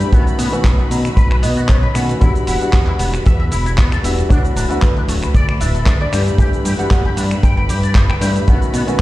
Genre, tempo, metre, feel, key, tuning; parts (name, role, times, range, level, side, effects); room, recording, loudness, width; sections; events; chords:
nu-disco, nu disco; 115 BPM; 4/4; swing 54% on 16ths; A4 = 440 Hz
warm grand piano; accompaniment; 0.0-9.0 s; D#3 to C#5; -22 LUFS; left 2 dB; sidechain pumping, slapback echo
dark studio string section; sustained chords; 0.0-9.0 s; B4 to B5; -29 LUFS; left 1 dB; sidechain pumping
fat analog bass; bass; 0.0-9.0 s; D1 to B2; -18 LUFS; equal
dusty soul sampler-style drum kit; drums; 0.0-9.0 s; cabasa, finger snaps, handclaps, hi-hat; -26 LUFS; right 1 dB
electric guitar with an envelope filter; riff; 0.1-8.8 s; F#3 to G5; -27 LUFS; left 2 dB; ensemble chorus, slapback echo
kick drum; drums; 0.1-9.0 s; -13 LUFS; equal
wide unison lead; melody; 0.5-9.0 s; B4 to F#5; -27 LUFS; right 1 dB; tape echo
studio reverb; played on a big sound system in a bare room, large studio reverb; -13 LUFS; side -17 dB against mid
0.0-9.0 A section
0.1 B7; 2.2 Em7; 4.3 Dmaj7; 6.1 G69; 8.5 B7